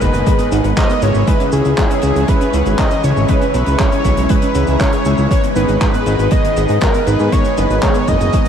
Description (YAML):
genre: italo disco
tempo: 119 BPM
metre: 4/4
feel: straight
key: G# minor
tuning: A4 = 440 Hz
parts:
  - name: wide unison lead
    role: melody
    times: 0.0-8.5 s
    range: G#4 to D#5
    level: -19 LUFS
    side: equal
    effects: ping-pong delay
  - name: phased string machine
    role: sustained chords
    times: 0.0-8.5 s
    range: D#3 to A#5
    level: -20 LUFS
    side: right 1 dB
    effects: ensemble chorus, phaser, vintage 12-bit sampler grit
  - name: soft round pluck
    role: arpeggios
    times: 0.0-8.5 s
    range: G#3 to E5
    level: -24 LUFS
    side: right 3 dB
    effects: chorus, vintage 12-bit sampler grit, ping-pong delay
  - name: analog synth brass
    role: stabs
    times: 0.0-8.5 s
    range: G#2 to F#5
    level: -22 LUFS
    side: left 2 dB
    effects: chorus
  - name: fat analog bass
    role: bass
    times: 0.0-8.3 s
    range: F#1 to G#2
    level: -16 LUFS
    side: equal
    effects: tube saturation
  - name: damped 70s drum kit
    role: drums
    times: 0.0-8.5 s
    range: cabasa, handclaps, hi-hat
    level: -24 LUFS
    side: equal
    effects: studio reverb
  - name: electronic kick drum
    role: drums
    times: 0.0-8.4 s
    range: none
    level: -16 LUFS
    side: equal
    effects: studio reverb
room: moderate huge ambient reverb, RT60 7.7 s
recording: dreamy mix soaked in reverb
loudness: -12 LUFS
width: side -8 dB against mid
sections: 0.0-8.5 A section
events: none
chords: 0.0 G#m; 1.3 C#m; 5.3 G#m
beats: 0.27 0.77 | 1.27 1.78 2.28 2.79 | 3.29 3.79 4.30 4.80 | 5.31 5.81 6.32 6.82 | 7.32 7.83 8.33